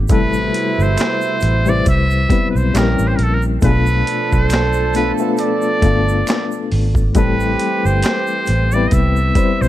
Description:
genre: R&B, neo-soul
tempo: 68 BPM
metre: 4/4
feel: swing 56% on 16ths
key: A minor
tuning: A4 = 439 Hz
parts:
  - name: reed electric piano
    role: accompaniment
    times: 0.0-9.7 s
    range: B2 to C5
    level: -19 LUFS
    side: left 5 dB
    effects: fast tremolo
  - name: vintage muted fingered electric bass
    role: bass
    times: 0.0-9.7 s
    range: G1 to C2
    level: -17 LUFS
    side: right 1 dB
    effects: none
  - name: trumpet with metal mute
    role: melody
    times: 0.1-9.7 s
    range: A4 to E5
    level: -21 LUFS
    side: equal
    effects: none
  - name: warm saxophone section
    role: stabs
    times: 0.1-9.3 s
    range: B2 to A4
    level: -24 LUFS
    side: right 7 dB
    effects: tape echo
  - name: boom bap sampler-style drum kit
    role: drums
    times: 0.1-9.6 s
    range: handclaps, hi-hat, kick drum, snare drum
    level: -18 LUFS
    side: right 1 dB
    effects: none
  - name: egg shaker and finger snaps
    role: percussion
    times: 0.1-9.7 s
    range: none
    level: -36 LUFS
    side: right 7 dB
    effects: none
room: small room ambience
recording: dark, warm production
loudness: -13 LUFS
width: side -13 dB against mid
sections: 0.0-9.7 A section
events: none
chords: 0.1 Am9; 2.7 A#dim7; 3.6 Bm7b5; 7.2 Am9

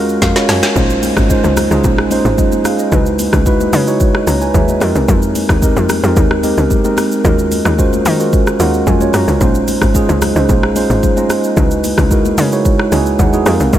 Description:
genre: amapiano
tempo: 111 BPM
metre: 4/4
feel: straight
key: Bb minor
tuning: A4 = 440 Hz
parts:
  - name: mellow tine electric piano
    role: accompaniment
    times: 0.0-13.8 s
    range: Ab3 to Bb5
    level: -14 LUFS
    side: right 1 dB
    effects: none
  - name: tight log drum bass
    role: bass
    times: 0.0-13.8 s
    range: Ab1 to Eb3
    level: -16 LUFS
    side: equal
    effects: none
  - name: afro-pop drum kit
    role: drums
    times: 0.1-13.8 s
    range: hi-hat, kick drum, rim click, shaker, snare drum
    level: -16 LUFS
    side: equal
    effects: none
  - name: congas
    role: percussion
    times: 0.8-13.8 s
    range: none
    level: -25 LUFS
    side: left 10 dB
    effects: none
room: moderate huge ambient reverb, RT60 7.8 s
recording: dreamy mix soaked in reverb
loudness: -10 LUFS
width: side -12 dB against mid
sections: 0.0-13.8 A section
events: tine electric piano fill 0.0-0.8, 8.3-9.4, 12.7-13.7; drum fill 0.2-0.8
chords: 0.0 Ebm11; 0.8 Bbm11; 2.9 Dbm11; 4.8 Fm11; 7.2 Ebm11; 9.4 Bbm11; 11.6 Dbm11

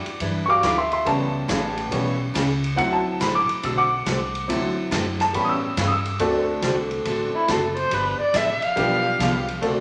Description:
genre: country, western swing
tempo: 140 BPM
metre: 4/4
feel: swing 66% on 8ths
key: D mixolydian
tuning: A4 = 441 Hz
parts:
  - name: clear upright piano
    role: accompaniment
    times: 0.0-9.8 s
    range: F#3 to E6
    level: -25 LUFS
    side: equal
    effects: none
  - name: upright bass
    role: bass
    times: 0.0-9.8 s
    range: F#1 to A2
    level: -32 LUFS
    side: equal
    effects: none
  - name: vintage drum kit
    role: drums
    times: 0.1-9.8 s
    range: hi-hat, kick drum, ride cymbal, snare drum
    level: -32 LUFS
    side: equal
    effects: none
  - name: picked steel-string acoustic guitar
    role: accompaniment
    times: 0.2-9.8 s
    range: C#3 to B4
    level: -30 LUFS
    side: equal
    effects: none
  - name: dark erhu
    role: second line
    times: 7.4-9.6 s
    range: E4 to F5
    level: -24 LUFS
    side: equal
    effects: none
room: wet large studio reverb, RT60 0.9 s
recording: none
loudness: -22 LUFS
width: mono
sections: 0.0-6.2 A section; 6.2-9.8 A section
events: upright piano solo 0.0-6.2; erhu solo 6.2-9.8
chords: 0.0 Em7; 1.1 A7; 2.8 D7; 5.3 A7; 6.2 D7; 7.9 G7

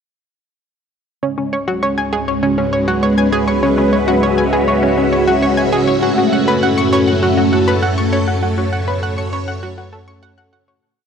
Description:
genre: ambient, sequencer-driven space music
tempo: 100 BPM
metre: 4/4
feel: straight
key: C# minor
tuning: A4 = 440 Hz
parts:
  - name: string machine, full ensemble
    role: sustained chords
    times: 1.2-10.8 s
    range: G#3 to E5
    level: -15 LUFS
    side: equal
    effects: phaser, ensemble chorus
  - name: analog pluck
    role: riff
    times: 1.2-10.8 s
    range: C#4 to C#6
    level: -18 LUFS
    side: equal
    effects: chorus, analog delay
  - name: warm sub bass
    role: bass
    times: 1.2-10.8 s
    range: C#2 to F#2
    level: -24 LUFS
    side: equal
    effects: none
room: wet huge ambient reverb, RT60 7.0 s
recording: cassette tape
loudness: -13 LUFS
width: side -7 dB against mid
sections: 1.2-10.8 A section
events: fade-in on sub bass 1.2-10.8; fade-out 7.6-10.8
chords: 1.2 C#m; 6.0 F#m

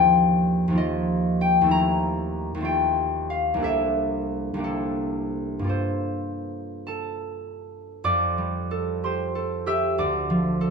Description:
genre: classical, solo harp piece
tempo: 50-65 BPM (dotted quarters)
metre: 6/8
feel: rubato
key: F major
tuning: A4 = 442 Hz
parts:
  - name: concert harp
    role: solo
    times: 0.0-10.7 s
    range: C2 to E6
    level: -22 LUFS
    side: left 1 dB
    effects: none
room: moderate recital hall reverb, RT60 1.5 s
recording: close, detailed microphones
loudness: -22 LUFS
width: side -5 dB against mid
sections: 0.0-8.0 A section; 8.0-10.7 B section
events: none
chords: 0.0 Ebadd9; 1.7 C6/Eb; 2.7 Fmaj7/Eb; 3.6 C13; 5.7 Gm11; 8.0 Fadd9; 10.0 Dm9

